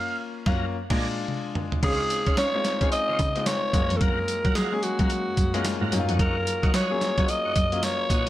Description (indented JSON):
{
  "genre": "R&B, new jack swing",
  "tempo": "110 BPM",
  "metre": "4/4",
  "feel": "swing 61% on 16ths",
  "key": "Eb dorian",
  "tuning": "A4 = 440 Hz",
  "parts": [
    { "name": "raspy alto saxophone", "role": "melody", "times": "0.0-8.3 s", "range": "Gb4 to F5", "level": "-26 LUFS", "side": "equal", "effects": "none" },
    { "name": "clear grand piano", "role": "accompaniment", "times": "0.5-8.3 s", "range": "Gb3 to Ab4", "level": "-30 LUFS", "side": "left 4 dB", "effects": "none" },
    { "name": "tonewheel organ", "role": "stabs", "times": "0.5-8.3 s", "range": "Db4 to Db5", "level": "-36 LUFS", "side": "right 1 dB", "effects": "chorus vibrato, slow rotary speaker" },
    { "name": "warm cello", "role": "bass", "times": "0.5-8.3 s", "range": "F2 to Db4", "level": "-29 LUFS", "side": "right 1 dB", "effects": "none" },
    { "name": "dusty soul sampler-style drum kit", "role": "drums", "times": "0.5-8.3 s", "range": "crash cymbal, handclaps, hi-hat, kick drum, snare drum, tambourine, toms", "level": "-26 LUFS", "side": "equal", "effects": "none" }
  ],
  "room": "little or no reverb",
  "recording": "none",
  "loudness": "-22 LUFS",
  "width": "side -14 dB against mid",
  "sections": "0.0-1.8 A section; 1.8-8.3 B section",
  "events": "band accent 0.0-1.8; drum fill 1.3-1.8",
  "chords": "0.0 Gbmaj7; 0.7 Bb7; 1.8 Dbmaj7; 3.7 Gbmaj7; 5.9 Ebm7"
}